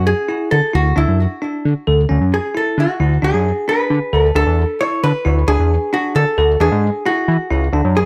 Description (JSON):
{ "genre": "progressive instrumental, band music in an uneven meter", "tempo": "266 BPM (eighths)", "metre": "5/8", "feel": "straight", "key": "D lydian", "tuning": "A4 = 440 Hz", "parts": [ { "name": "hollow-body jazz guitar", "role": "melody", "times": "0.0-8.1 s", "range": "E4 to C#5", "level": "-21 LUFS", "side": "equal", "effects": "digital delay" }, { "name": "bell-like tine electric piano", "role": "arpeggios", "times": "0.0-8.0 s", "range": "C#4 to A4", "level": "-24 LUFS", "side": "equal", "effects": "none" }, { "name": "fat analog bass", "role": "bass", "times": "0.0-8.0 s", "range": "C#2 to E3", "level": "-18 LUFS", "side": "equal", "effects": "none" } ], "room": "moderate studio reverb, RT60 0.7 s", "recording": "none", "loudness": "-16 LUFS", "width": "mono", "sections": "0.0-8.1 A section", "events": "hollow-body jazz guitar solo 0.0-8.1", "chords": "0.0 Dadd9(#11); 4.4 Bm7/D; 6.6 E9" }